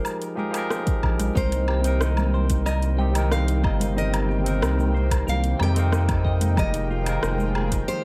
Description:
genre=sunset chillout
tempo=92 BPM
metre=4/4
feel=straight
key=unclear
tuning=A4 = 441 Hz
part: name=nylon-string guitar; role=melody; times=0.0-8.0 s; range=Bb4 to G5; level=-34 LUFS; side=equal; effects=analog delay
part: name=barky tine electric piano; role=accompaniment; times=0.0-8.0 s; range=C3 to G5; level=-32 LUFS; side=equal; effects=analog delay
part: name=deep house drum kit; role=drums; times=0.0-8.0 s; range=cabasa, hi-hat, rim click, woodblock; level=-33 LUFS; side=equal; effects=overdrive, analog delay
part: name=congas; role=percussion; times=0.4-7.5 s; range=none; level=-36 LUFS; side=equal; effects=analog delay
part: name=electronic kick drum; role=drums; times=0.9-7.8 s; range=none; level=-28 LUFS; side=equal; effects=overdrive
part: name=round analog bass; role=bass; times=1.0-7.8 s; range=F1 to F2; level=-25 LUFS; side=equal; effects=none
part: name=lush unison pad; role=sustained chords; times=1.4-8.0 s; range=Eb3 to G5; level=-34 LUFS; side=equal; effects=chorus, phaser
part: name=clean electric guitar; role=arpeggios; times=1.4-8.0 s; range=Eb4 to G5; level=-37 LUFS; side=equal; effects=subtle chorus, analog delay
room=light reverb, digital ambience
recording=echo-heavy mix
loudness=-23 LUFS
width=mono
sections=0.0-8.0 A section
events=none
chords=0.0 Fm11; 1.4 Cm7; 6.6 Fm11

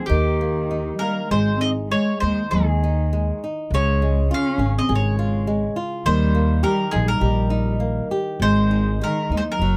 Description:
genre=fado-style ballad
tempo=101 BPM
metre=4/4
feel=rubato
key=Ab major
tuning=A4 = 438 Hz
part: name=mandolin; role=melody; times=0.0-9.8 s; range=G4 to F5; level=-28 LUFS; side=equal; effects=none
part: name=warm cello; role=second line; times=0.0-9.8 s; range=Eb3 to Db4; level=-27 LUFS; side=equal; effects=none
part: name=flamenco guitar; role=accompaniment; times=0.0-9.8 s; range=Db3 to Ab4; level=-28 LUFS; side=equal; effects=none
part: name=upright bass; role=bass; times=0.1-9.8 s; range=Gb1 to Eb2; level=-24 LUFS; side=equal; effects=none
room=light reverb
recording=close, detailed microphones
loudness=-21 LUFS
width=mono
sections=0.0-9.8 A section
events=none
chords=0.1 Eb; 1.3 Ab5; 3.7 Db; 6.1 Eb; 8.4 Ab

